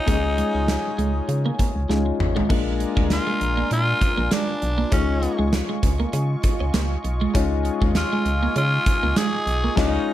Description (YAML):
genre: 1980s-style pop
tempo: 99 BPM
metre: 4/4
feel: swing 55% on 16ths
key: unclear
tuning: A4 = 442 Hz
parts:
  - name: growling tenor saxophone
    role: melody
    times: 0.0-10.1 s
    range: Db4 to Ab4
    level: -25 LUFS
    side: equal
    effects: slapback echo
  - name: warm concert grand piano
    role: accompaniment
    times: 0.0-10.1 s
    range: Ab3 to Ab4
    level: -27 LUFS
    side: left 8 dB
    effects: none
  - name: brassy analog pad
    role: sustained chords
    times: 0.0-10.1 s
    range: F4 to Eb6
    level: -32 LUFS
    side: right 3 dB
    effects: chorus
  - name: twelve-string electric guitar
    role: riff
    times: 0.1-9.7 s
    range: Ab3 to Eb4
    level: -27 LUFS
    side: right 4 dB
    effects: wide subtle chorus, slapback echo
  - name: solid FM bass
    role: bass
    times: 0.1-10.0 s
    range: Ab1 to Db3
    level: -24 LUFS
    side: equal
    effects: none
  - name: gated 80s drum kit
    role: drums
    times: 0.1-10.0 s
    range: crash cymbal, hi-hat, kick drum, snare drum, toms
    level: -23 LUFS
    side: equal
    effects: none
room: little or no reverb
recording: none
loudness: -19 LUFS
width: side -13 dB against mid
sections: 0.0-2.5 A section; 2.5-10.1 B section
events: drum fill 1.9-2.5; band accent 9.8-10.1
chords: 0.0 Dbadd9; 2.5 Bb7; 4.9 Dbadd9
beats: | 0.08 0.68 1.29 1.89 | 2.50 3.11 3.71 4.32 | 4.92 5.53 6.14 6.74 | 7.35 7.96 8.56 9.17 | 9.77